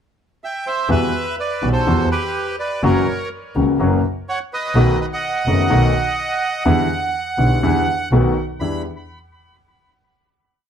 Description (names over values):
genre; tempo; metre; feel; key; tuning
tango; 125 BPM; 4/4; rubato; E minor; A4 = 441 Hz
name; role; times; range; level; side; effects
bandoneon; melody; 0.4-8.8 s; G4 to B5; -22 LUFS; right 3 dB; tape echo
warm concert grand piano; accompaniment; 0.9-8.8 s; F#1 to F#4; -19 LUFS; left 2 dB; none
warm double bass; bass; 0.9-8.8 s; F#1 to E2; -19 LUFS; equal; none
room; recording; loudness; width
wet club reverb, RT60 0.6 s; heard from further back in the room; -16 LUFS; side -8 dB against mid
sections
0.0-0.9 pickup bar; 0.9-8.6 A section; 8.6-10.5 final chord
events
none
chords
0.0 C; 0.9 Emadd9; 2.8 F#7; 4.7 B7; 6.7 Em7; 8.1 B7; 8.6 Em7